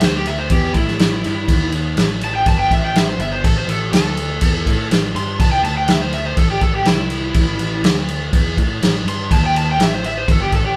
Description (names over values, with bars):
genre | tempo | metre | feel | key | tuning
blues rock power trio and southern rock | 123 BPM | 4/4 | straight | unclear | A4 = 440 Hz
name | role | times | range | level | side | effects
overdriven slide guitar | melody | 0.0-10.8 s | E4 to C6 | -23 LUFS | equal | none
fuzz picked electric bass | bass | 0.0-10.8 s | G1 to A2 | -24 LUFS | equal | overdrive
vintage drum kit | drums | 0.0-10.6 s | crash cymbal, kick drum, snare drum | -19 LUFS | equal | none
room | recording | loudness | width
wet studio ambience, RT60 0.5 s | band playing live in one room | -17 LUFS | mono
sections
0.0-10.8 A section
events
electric slide guitar solo 0.0-10.8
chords
0.0 A5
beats
0.02 0.51 1.00 | 1.49 1.98 2.47 2.95 | 3.44 3.93 4.42 4.91 | 5.40 5.88 6.37 6.86 | 7.35 7.84 8.33 8.82 | 9.30 9.79 10.28